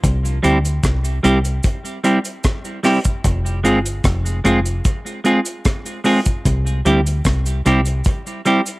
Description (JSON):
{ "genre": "roots reggae", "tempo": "75 BPM", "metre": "4/4", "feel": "straight", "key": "unclear", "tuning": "A4 = 440 Hz", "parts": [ { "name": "deep dub fingered electric bass", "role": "bass", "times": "0.0-8.0 s", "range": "F1 to D2", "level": "-18 LUFS", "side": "equal", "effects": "none" }, { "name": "deep reggae drum kit", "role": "drums", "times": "0.0-8.8 s", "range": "hi-hat, kick drum, rim click", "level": "-19 LUFS", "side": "equal", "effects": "tape echo" }, { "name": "cabasa", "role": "percussion", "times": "0.0-8.8 s", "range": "none", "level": "-31 LUFS", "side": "right 2 dB", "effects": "none" }, { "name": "semi-hollow electric guitar", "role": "accompaniment", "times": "0.4-8.6 s", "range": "G3 to Ab4", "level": "-18 LUFS", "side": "right 1 dB", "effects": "cassette tape, tape echo" } ], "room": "light reverb, studio ambience", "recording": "home recording on cassette", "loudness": "-15 LUFS", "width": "side -21 dB against mid", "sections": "0.0-8.8 A section", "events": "none", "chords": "0.0 C; 3.2 Fm; 6.5 C" }